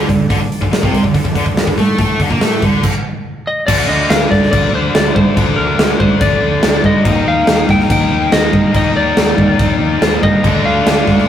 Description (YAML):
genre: hard rock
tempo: 142 BPM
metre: 4/4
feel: straight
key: D phrygian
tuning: A4 = 436 Hz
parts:
  - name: tonewheel organ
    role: sustained chords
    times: 0.0-11.3 s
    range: D4 to A5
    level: -30 LUFS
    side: equal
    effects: none
  - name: high-gain distorted guitar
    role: riff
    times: 0.0-2.8, 10.4-11.3 s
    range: C3 to D4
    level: -20 LUFS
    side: right 3 dB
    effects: distortion
  - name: tight distorted guitar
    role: riff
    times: 0.0-11.3 s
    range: C3 to Eb4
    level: -18 LUFS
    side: left 4 dB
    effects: distortion
  - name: fuzz fingered electric bass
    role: bass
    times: 0.0-11.2 s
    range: C2 to Bb2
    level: -21 LUFS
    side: equal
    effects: overdrive
  - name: big rock drum kit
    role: drums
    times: 0.1-11.2 s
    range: crash cymbal, hi-hat, kick drum, snare drum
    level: -13 LUFS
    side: right 1 dB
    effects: none
  - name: lightly driven lead guitar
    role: melody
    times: 3.5-11.3 s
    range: Bb4 to G5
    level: -17 LUFS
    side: left 2 dB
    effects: slapback echo
room: moderate small room reverb, RT60 0.5 s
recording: rough rehearsal-room recording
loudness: -11 LUFS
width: side -10 dB against mid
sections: 0.0-3.7 A section; 3.7-11.3 B section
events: stop 2.8-3.7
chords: 0.0 D5; 7.1 Eb5; 10.4 Dm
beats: | 0.30 0.72 1.15 1.57 | 1.99 2.42 2.84 3.26 | 3.68 4.11 4.53 4.95 | 5.37 5.79 6.21 6.64 | 7.06 7.48 7.90 8.32 | 8.75 9.17 9.59 10.02 | 10.44 10.86